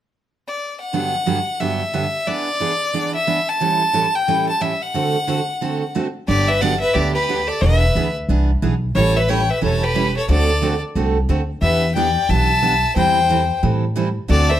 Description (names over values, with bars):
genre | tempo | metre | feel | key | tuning
country, western swing | 180 BPM | 4/4 | swing 61% on 8ths | G major | A4 = 440 Hz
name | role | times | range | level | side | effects
clear fiddle | melody | 0.5-14.6 s | B4 to A5 | -20 LUFS | left 2 dB | plate reverb
picked steel-string acoustic guitar | accompaniment | 0.9-14.5 s | G2 to A4 | -22 LUFS | right 5 dB | none
clear fiddle | second line | 6.3-14.6 s | G4 to E5 | -24 LUFS | right 1 dB | none
upright bass | bass | 6.3-14.6 s | E1 to A2 | -19 LUFS | equal | none
room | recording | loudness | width
moderate studio reverb, RT60 0.8 s | none | -16 LUFS | side -11 dB against mid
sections
0.9-6.3 A section; 6.3-14.6 B section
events
none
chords
0.0 N.C.; 0.9 Gmaj7; 2.3 E7; 3.6 A7; 4.9 D7; 6.3 Gmaj7; 7.6 E7; 9.0 A7; 10.3 D7; 11.6 Em7; 13.0 Am7/E